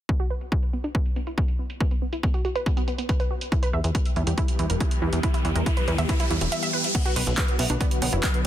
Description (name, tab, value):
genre	uplifting trance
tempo	140 BPM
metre	4/4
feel	straight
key	B minor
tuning	A4 = 441 Hz
part	wide unison pluck	arpeggios	0.1-8.5 s	B3 to E5	-31 LUFS	right 3 dB	sidechain pumping, ping-pong delay
part	electronic kick drum	drums	0.1-8.3 s	none	-24 LUFS	equal	none
part	punchy analog drum machine	drums	0.1-8.4 s	crash cymbal, handclaps, hi-hat	-32 LUFS	right 2 dB	overdrive, sidechain pumping on hats, low-pass filter on hats, sidechain pumping on cymbals, low-pass filter on cymbals, low-pass filter on snare, low-pass filter on room
part	analog string pad	sustained chords	3.5-8.5 s	D3 to G4	-32 LUFS	left 1 dB	ensemble chorus, sidechain pumping
part	riser	sound effects	4.7-6.9 s	none	-32 LUFS	equal	none
part	plucky analog bass	bass	3.7-8.2 s	E1 to E2	-25 LUFS	equal	sidechain pumping
part	big supersaw lead	melody	6.9-8.5 s	B4 to F#5	-33 LUFS	equal	phaser, sidechain pumping, low-pass filter, ping-pong delay
room	little or no reverb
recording	dense, heavily limited modern master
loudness	-22 LUFS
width	side -12 dB against mid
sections	0.1-6.9 A section; 6.9-8.5 B section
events	filter sweep on synth arpeggio sound 0.1-6.9; riser 4.7-6.9; kick drops out 6.5-6.9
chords	0.1 N.C.; 3.5 Em; 6.9 Bm